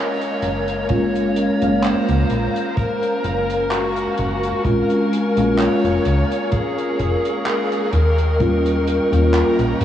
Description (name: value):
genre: vaporwave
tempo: 64 BPM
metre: 4/4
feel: swing 54% on 16ths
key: Bb minor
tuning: A4 = 442 Hz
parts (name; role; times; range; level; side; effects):
- dark smooth lead guitar; melody; 0.0-9.8 s; Gb4 to Db5; -24 LUFS; left 1 dB; overdrive, tape echo
- mellow FM electric piano; accompaniment; 0.0-9.8 s; G3 to F5; -20 LUFS; equal; tremolo, wide subtle chorus, analog delay
- soft string machine; sustained chords; 0.0-9.8 s; Bb4 to Db6; -25 LUFS; equal; ensemble chorus
- deep reggae drum kit; drums; 0.2-9.8 s; handclaps, hi-hat; -30 LUFS; equal; small room ambience
- slap-like FM bass; bass; 0.4-9.8 s; F1 to G2; -21 LUFS; equal; tube saturation
- kick drum; drums; 0.9-8.6 s; none; -23 LUFS; equal; small room ambience
room: wet huge ambient reverb, RT60 7.3 s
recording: dreamy mix soaked in reverb, cassette tape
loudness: -16 LUFS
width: side -11 dB against mid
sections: 0.0-9.8 A section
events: none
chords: 0.0 Bbm7; 0.9 Gbmaj7; 4.6 Bbm7; 7.9 Eb7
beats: | 0.90 1.84 2.77 3.71 | 4.65 5.59 6.52 7.46 | 8.40 9.34